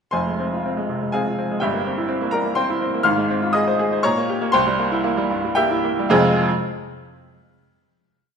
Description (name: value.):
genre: classical, virtuoso piano study.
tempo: 109-125 BPM.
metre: 3/4.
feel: rubato.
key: F minor.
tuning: A4 = 441 Hz.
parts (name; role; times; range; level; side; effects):
bright baby grand piano; solo; 0.1-6.5 s; F1 to F6; -18 LUFS; equal; none.
room: wet recital hall reverb, RT60 1.6 s.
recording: minimal, uncompressed stereo recording.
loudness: -18 LUFS.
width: side -6 dB against mid.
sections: 0.1-6.1 A section; 6.1-7.7 final chord.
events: none.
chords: 0.1 Fm; 1.6 C7/G; 3.1 Fm/Ab; 4.0 Gdim/Bb; 4.5 C7; 6.1 Fm.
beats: | 0.13 0.64 1.13 | 1.61 2.10 2.58 | 3.07 3.55 4.05 | 4.54 5.04 5.57 | 6.11.